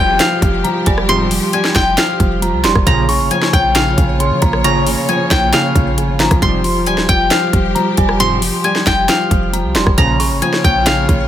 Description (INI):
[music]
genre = hip hop, trap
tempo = 135 BPM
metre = 4/4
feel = half-time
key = F minor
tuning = A4 = 440 Hz
[part]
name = steel-string zither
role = melody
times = 0.0-11.3 s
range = F4 to C6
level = -17 LUFS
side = left 2 dB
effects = none
[part]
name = dark concert grand piano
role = accompaniment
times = 0.0-11.3 s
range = Db3 to G3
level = -19 LUFS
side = left 1 dB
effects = none
[part]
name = warm studio string section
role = sustained chords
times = 0.0-11.3 s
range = G3 to Db5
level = -22 LUFS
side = right 1 dB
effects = none
[part]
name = clean 808-style bass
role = bass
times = 0.0-11.3 s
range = Eb1 to F3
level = -19 LUFS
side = equal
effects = none
[part]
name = downlifter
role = sound effects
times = 0.0-2.9 s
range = none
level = -30 LUFS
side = equal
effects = none
[part]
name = trap drum kit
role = drums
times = 0.2-11.2 s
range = hi-hat, kick drum, rim click, snare drum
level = -16 LUFS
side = equal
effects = none
[part]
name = dark detuned synth bell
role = second line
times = 0.6-10.4 s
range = Ab5 to Db6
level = -22 LUFS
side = right 2 dB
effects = chorus, phaser, ping-pong delay
[part]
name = chorused polysynth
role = stabs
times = 1.1-10.2 s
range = Ab2 to G3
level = -23 LUFS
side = right 1 dB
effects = none
[sound]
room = light reverb, digital ambience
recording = none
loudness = -11 LUFS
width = side -11 dB against mid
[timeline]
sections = 0.0-11.3 A section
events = none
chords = 0.0 Fmadd9; 2.9 Bbm; 6.4 Fmadd9; 10.0 Bbm